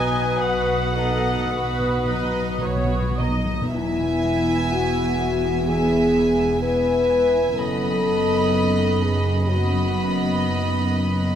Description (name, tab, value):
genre	classical, slow romantic movement for symphony orchestra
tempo	51-65 BPM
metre	4/4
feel	rubato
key	E major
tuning	A4 = 439 Hz
part	warm chamber violin section	melody	0.0-11.3 s	F#5 to B5	-29 LUFS	equal	none
part	bright large flute ensemble	second line	0.0-3.4 s	D#6	-32 LUFS	left 3 dB	none
part	clear clarinet	second line	0.0-3.4 s	B4	-29 LUFS	left 2 dB	none
part	warm symphonic violin section	second line	0.0-11.3 s	D#4 to E5	-30 LUFS	equal	none
part	dark studio viola section	accompaniment	0.0-11.3 s	B3 to D#5	-29 LUFS	right 1 dB	none
part	mellow bassoon	accompaniment	0.0-3.4 s	B2	-30 LUFS	right 2 dB	none
part	concert harp	arpeggios	0.0-11.4 s	E2 to B4	-29 LUFS	left 8 dB	none
part	warm chamber cello section	bass	0.0-11.3 s	E2 to B2	-28 LUFS	right 2 dB	none
part	warm symphonic double bass section	bass	0.0-11.3 s	E1 to B1	-27 LUFS	right 2 dB	none
part	timpani	percussion	0.0-3.7 s	B2	-31 LUFS	left 1 dB	none
part	mellow French horn section	sustained chords	3.7-10.9 s	E4 to B4	-22 LUFS	left 2 dB	none
room	moderate scoring stage reverb, RT60 1.9 s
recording	close, detailed microphones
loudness	-19 LUFS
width	side -9 dB against mid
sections	0.0-3.7 A section; 3.7-11.4 B section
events	timpani fill 0.0-3.7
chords	0.0 B; 3.7 E; 7.6 B7/F#